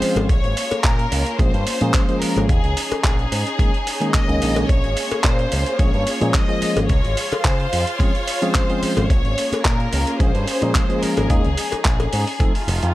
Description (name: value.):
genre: nu-disco, nu disco.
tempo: 109 BPM.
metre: 4/4.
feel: straight.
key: Bb minor.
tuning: A4 = 440 Hz.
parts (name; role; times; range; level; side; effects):
rich studio violin section; melody; 0.0-12.9 s; Ab4 to Eb5; -25 LUFS; left 2 dB; tape echo.
tine electric piano; accompaniment; 0.0-12.5 s; Eb3 to A4; -24 LUFS; equal; none.
clear studio string section; sustained chords; 0.0-12.9 s; A3 to C6; -28 LUFS; right 1 dB; sidechain pumping.
picked electric bass with an envelope filter; bass; 0.0-12.9 s; F1 to Db3; -22 LUFS; equal; tube saturation.
dusty soul sampler-style drum kit; drums; 0.0-12.9 s; handclaps, hi-hat; -25 LUFS; right 1 dB; none.
cowbell; percussion; 0.2-12.1 s; none; -26 LUFS; left 5 dB; none.
electronic kick drum; drums; 0.3-12.5 s; none; -19 LUFS; equal; none.
room: little or no reverb.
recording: none.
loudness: -17 LUFS.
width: side -16 dB against mid.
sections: 0.0-12.9 A section.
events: none.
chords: 0.3 Bbm7; 2.5 Eb7sus4; 4.7 Bbm7; 6.9 Dbmaj7; 9.1 Bbm7; 11.3 Eb7sus4; 12.4 F7.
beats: | 0.29 0.84 1.39 1.94 | 2.49 3.04 3.60 4.14 | 4.70 5.25 5.80 6.35 | 6.90 7.45 8.00 8.55 | 9.10 9.65 10.20 10.75 | 11.30 11.85 12.40.